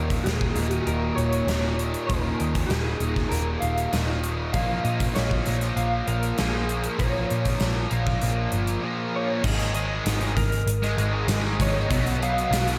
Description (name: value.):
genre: rock, shoegaze and dream pop.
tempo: 98 BPM.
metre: 4/4.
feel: straight.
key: unclear.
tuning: A4 = 441 Hz.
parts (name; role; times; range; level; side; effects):
electric guitar through a small old amp; melody; 0.0-12.8 s; Ab4 to F5; -33 LUFS; equal; tremolo, delay.
fuzz guitar; riff; 0.0-12.8 s; Eb2 to B3; -30 LUFS; equal; distortion, analog chorus.
vintage muted picked electric bass; bass; 0.0-12.8 s; Eb1 to Bb2; -29 LUFS; equal; none.
gated 80s drum kit; drums; 0.1-12.8 s; crash cymbal, hi-hat, kick drum, snare drum; -30 LUFS; equal; none.
room: wet lush hall reverb, RT60 2.2 s.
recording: dreamy mix soaked in reverb.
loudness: -25 LUFS.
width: mono.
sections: 0.0-9.5 A section; 9.5-12.8 B section.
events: none.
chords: 0.0 Eb5; 4.5 Bbm; 9.5 Absus2; 11.9 B5.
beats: 0.26 0.87 1.48 | 2.10 2.71 3.32 3.93 | 4.55 5.16 5.78 6.39 | 7.00 7.62 8.23 8.84 | 9.46 10.07 10.68 11.29 | 11.91 12.52.